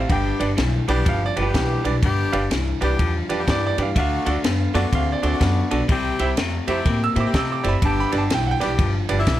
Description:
electric blues shuffle; 124 BPM; 4/4; swing 63% on 8ths; G mixolydian; A4 = 438 Hz
bright upright piano; accompaniment; 0.0-9.2 s; D4 to E6; -25 LUFS; right 6 dB
electric guitar through a small old amp; riff; 0.0-9.4 s; G2 to C4; -26 LUFS; left 4 dB
upright bass; bass; 0.0-9.4 s; F#1 to C3; -23 LUFS; equal
bright saxophone section; stabs; 0.1-9.4 s; A3 to G4; -27 LUFS; left 3 dB
compact cocktail drum kit; drums; 0.1-9.4 s; kick drum, ride cymbal, snare drum; -25 LUFS; equal
little or no reverb; -18 LUFS; side -13 dB against mid
0.0-9.4 A section
0.1 G; 4.0 D; 5.9 C; 7.8 G

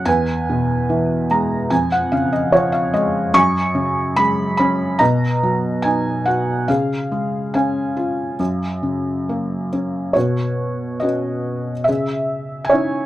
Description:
classical, lyrical solo piano; 72 BPM; 4/4; rubato; F# major; A4 = 437 Hz
felt-muted upright piano; solo; 0.0-13.1 s; E2 to C#6; -17 LUFS; equal
little or no reverb; close, detailed microphones; -17 LUFS; side -14 dB against mid
0.0-10.2 A section; 10.2-13.1 B section
felt piano fill 0.9-3.3
0.1 E; 1.7 C#/E#; 3.3 F#sus2; 5.0 B; 6.7 C#; 8.4 F#; 10.2 Bsus2; 11.9 C#madd9

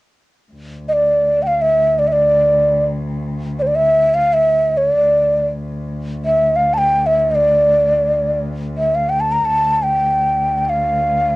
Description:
turkish; free time; D makam ussak; A4 = 440 Hz
dark cello; drone; 0.5-11.4 s; D2; -24 LUFS; left 1 dB; stereo widening
breathy mellow ney; melody; 0.9-11.4 s; C5 to Bb5; -13 LUFS; equal; cassette tape
moderate studio reverb, RT60 0.6 s; home recording on cassette; -13 LUFS; side -20 dB against mid
0.5-11.4 A section

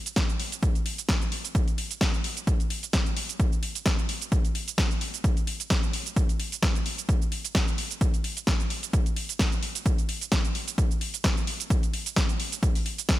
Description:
house; 130 BPM; 4/4; swing 55% on 16ths
house drum kit; drums; 0.1-13.2 s; hi-hat, shaker, snare drum; -30 LUFS; right 1 dB
electronic kick drum; drums; 0.2-13.2 s; -25 LUFS; equal; overdrive
digital ambience; -24 LUFS; side -15 dB against mid
0.0-13.2 A section

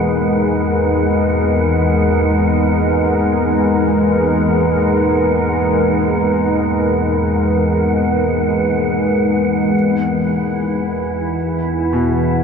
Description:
dark ambient drone; free time; A4 = 440 Hz
deep dark ambient pad; sustained chords; 0.0-12.4 s; G#3 to G5; -15 LUFS; left 1 dB; chorus, built-in reverb
clear grand piano; arpeggios; 0.0-12.4 s; B2 to G#3; -24 LUFS; left 2 dB; tape echo
organ-like drone; drone; 0.0-12.4 s; E2 to E3; -19 LUFS; equal; ensemble chorus, built-in reverb
wind-like tuned noise texture; texture; 0.0-9.8 s; F#5; -26 LUFS; right 2 dB; built-in reverb
wet huge ambient reverb, RT60 7.3 s; -14 LUFS; side -6 dB against mid
0.0-9.7 A section; 9.7-12.4 B section
0.0 G#madd9; 9.7 Em

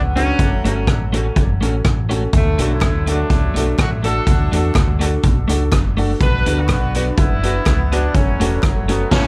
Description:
ska; 124 BPM; 4/4; swing 53% on 8ths; D major; A4 = 444 Hz
warm horn section; melody; 0.0-9.3 s; D3 to B4; -26 LUFS; equal; dub echo
deep dub fingered electric bass; bass; 0.0-9.3 s; E1 to E2; -22 LUFS; equal
clean electric guitar; accompaniment; 0.2-9.3 s; A3 to A4; -27 LUFS; equal; tremolo
clear upright piano; stabs; 0.2-9.3 s; C#4 to B4; -28 LUFS; equal; dub echo, plate reverb
street-band drum kit; drums; 0.2-9.3 s; crash cymbal, hi-hat, kick drum, rim click, snare drum; -20 LUFS; equal
group handclap; percussion; 2.8-8.8 s; -42 LUFS; equal
light reverb; -17 LUFS; mono
0.0-9.3 A section
band accent 9.1
0.4 F#m; 2.3 D; 6.2 Bm; 8.1 F#m

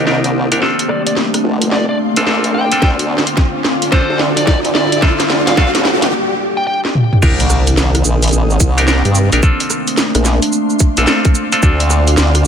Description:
glitch hop; 109 BPM; 4/4; swing 63% on 16ths; C dorian; A4 = 442 Hz
smooth overdriven lead guitar; melody; 0.0-6.8 s; C5 to G5; -21 LUFS; equal; low-pass filter, ping-pong delay
warbly tape-like pad; sustained chords; 0.0-12.5 s; C3 to F4; -20 LUFS; equal; chorus, built-in reverb, sidechain pumping
clav; stabs; 0.0-12.5 s; C4 to Bb4; -20 LUFS; left 1 dB; sidechain pumping, low-pass filter, ping-pong delay
formant-sweep wobble bass; bass; 0.0-12.4 s; F1 to G2; -15 LUFS; equal; chorus, tube saturation, high-pass filter
riser and impact; sound effects; 1.0-9.4 s; -21 LUFS; equal
ethereal airy pad; texture; 0.0-12.5 s; C4 to Eb6; -23 LUFS; right 1 dB; ensemble chorus, built-in reverb, sidechain pumping
drum and bass drum kit; drums; 0.1-12.5 s; crash cymbal, hi-hat, rim click, shaker, snare drum, toms; -17 LUFS; right 1 dB
electronic kick drum; drums; 2.8-11.8 s; -12 LUFS; equal
light reverb; -11 LUFS; side -8 dB against mid
0.0-7.2 A section; 7.2-12.5 B section
build-up 0.0-7.2; drum fill 0.0-6.1, 6.8-7.2; filter sweep on lead electric guitar 0.0-7.2; riser 1.0-6.1; break 6.1-7.2; drop 7.2-12.5; impact 7.2-9.4
0.0 Cm7; 0.6 Bbmaj7; 2.8 Dm7; 5.0 Gm7; 7.2 Cm7; 9.4 Bbmaj7; 11.6 Dm7

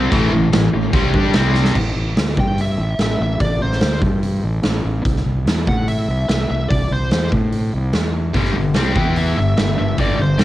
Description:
hard rock; 146 BPM; 4/4; straight; A minor; A4 = 438 Hz
distorted electric guitar; riff; 0.0-1.8 s; A2 to G4; -22 LUFS; left 1 dB; overdrive, cassette tape
high-gain distorted guitar; riff; 0.0-1.8, 8.4-10.4 s; G2 to G4; -21 LUFS; left 5 dB; distortion, cassette tape
sludgy distorted guitar; riff; 0.0-1.8, 8.3-10.4 s; G2 to G4; -23 LUFS; right 6 dB; overdrive, cassette tape
fuzz fingered electric bass; bass; 0.0-10.4 s; G1 to A2; -19 LUFS; equal; overdrive
huge arena drum kit; drums; 0.1-10.4 s; crash cymbal, hi-hat, kick drum, snare drum; -20 LUFS; equal
bluesy overdriven lead guitar; melody; 2.4-10.4 s; C5 to G5; -24 LUFS; equal; distortion, cassette tape
light reverb; home recording on cassette; -15 LUFS; side -15 dB against mid
0.0-1.8 A section; 1.8-10.4 B section
drum fill 1.6
0.1 Am; 1.3 C5; 1.8 Asus4; 2.4 Em/G; 2.8 Am; 4.0 N.C.; 5.1 C; 5.7 A5; 6.1 C; 7.3 N.C.; 8.3 Gsus4; 9.0 E5; 9.4 Gsus4

